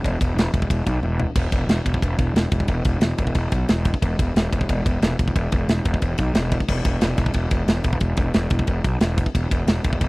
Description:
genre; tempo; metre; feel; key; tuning
heavy metal; 180 BPM; 4/4; straight; unclear; A4 = 440 Hz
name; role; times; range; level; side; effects
fuzz picked electric bass; bass; 0.0-10.1 s; E1 to B1; -22 LUFS; equal; overdrive
tight metal drum kit; drums; 0.0-10.1 s; crash cymbal, kick drum, ride cymbal, snare drum, toms; -22 LUFS; equal; none
room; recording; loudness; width
little or no reverb; dry, close 1970s-style studio recording; -19 LUFS; side -24 dB against mid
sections
0.0-10.1 A section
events
drum fill 1.0-1.4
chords
none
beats
| 0.03 0.36 0.70 1.03 | 1.36 1.70 2.03 2.36 | 2.69 3.03 3.36 3.69 | 4.03 4.36 4.69 5.02 | 5.36 5.69 6.02 6.35 | 6.69 7.02 7.35 7.68 | 8.02 8.35 8.68 9.01 | 9.35 9.68 10.01

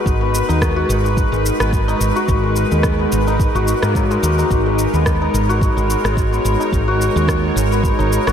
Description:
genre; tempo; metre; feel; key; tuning
organic downtempo; 108 BPM; 4/4; swing 55% on 16ths; G# minor; A4 = 440 Hz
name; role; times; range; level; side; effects
bowed-like drone; sustained chords; 0.0-8.3 s; G#3 to C#5; -21 LUFS; right 1 dB; built-in reverb, sidechain pumping
santur; arpeggios; 0.0-8.3 s; F#3 to F#4; -20 LUFS; left 3 dB; diffuse ambient delay
woody fretless electric bass; bass; 0.1-8.3 s; G#1 to G#2; -19 LUFS; equal; analog chorus, sidechain pumping
electronic kick drum; drums; 0.1-8.0 s; none; -20 LUFS; equal; none
electronic shaker and rim click; drums; 0.1-8.3 s; none; -25 LUFS; equal; none
room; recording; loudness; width
moderate lush hall reverb, RT60 2.1 s; dreamy mix soaked in reverb; -14 LUFS; side -8 dB against mid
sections
0.0-8.3 A section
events
none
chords
0.0 G#m7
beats
| 0.06 0.62 1.17 1.73 | 2.28 2.84 3.39 3.95 | 4.50 5.06 5.62 6.17 | 6.73 7.28 7.84

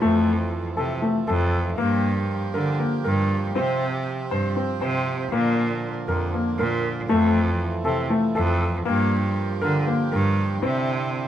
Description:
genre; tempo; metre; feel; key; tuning
contemporary instrumental, chamber music in an uneven meter; 238 BPM (eighths); 7/8; straight; G dorian; A4 = 442 Hz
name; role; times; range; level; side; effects
hand-pumped harmonium; sustained chords; 0.0-11.3 s; D3 to G4; -30 LUFS; right 4 dB; none
warm baby grand piano; arpeggios; 0.0-10.9 s; A3 to C5; -24 LUFS; left 3 dB; none
clear cello; bass; 0.0-11.3 s; F2 to D3; -24 LUFS; right 1 dB; none
room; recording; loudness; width
light reverb; minimal, uncompressed stereo recording; -21 LUFS; side -11 dB against mid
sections
0.0-11.3 A section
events
none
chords
0.0 Fmaj7; 1.8 Gm7; 3.6 Csus4; 5.3 Bb; 7.1 Fmaj7; 8.9 Gm7; 10.6 Cadd9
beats
| 0.02 0.27 0.52 0.78 1.03 1.28 1.54 | 1.79 2.04 2.29 2.55 2.80 3.05 3.31 | 3.56 3.81 4.07 4.32 4.57 4.82 5.08 | 5.33 5.58 5.83 6.08 6.34 6.59 6.84 | 7.09 7.35 7.60 7.85 8.11 8.36 8.61 | 8.86 9.11 9.37 9.62 9.87 10.12 10.38 | 10.63 10.88 11.13

